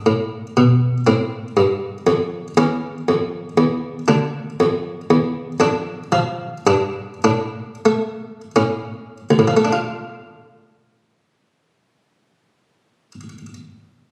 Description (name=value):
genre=classical, baroque-style suite movement for harpsichord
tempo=76-121 BPM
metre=3/4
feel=rubato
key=D minor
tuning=A4 = 440 Hz
part: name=buff-stop harpsichord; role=solo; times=0.0-13.5 s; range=D2 to F4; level=-19 LUFS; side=equal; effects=none
room=wet recital hall reverb, RT60 1.4 s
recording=recorded on a phone in the room, studio reverb, compression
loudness=-19 LUFS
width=mono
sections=0.0-9.3 A section; 9.3-14.0 B section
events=slowing down 4.9-9.3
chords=0.0 G#dim (rootless); 1.1 Am; 2.6 C#m/E; 4.1 Dm; 5.6 Dm/F; 6.7 G5; 7.3 D5/A; 8.6 A; 9.3 Dm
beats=0.07 0.57 | 1.07 1.57 2.08 | 2.58 3.08 3.58 | 4.09 4.60 5.11 | 5.62 6.15 6.69 | 7.26 7.88 8.56 | 9.32 10.10 10.89 | 11.67 12.44 13.20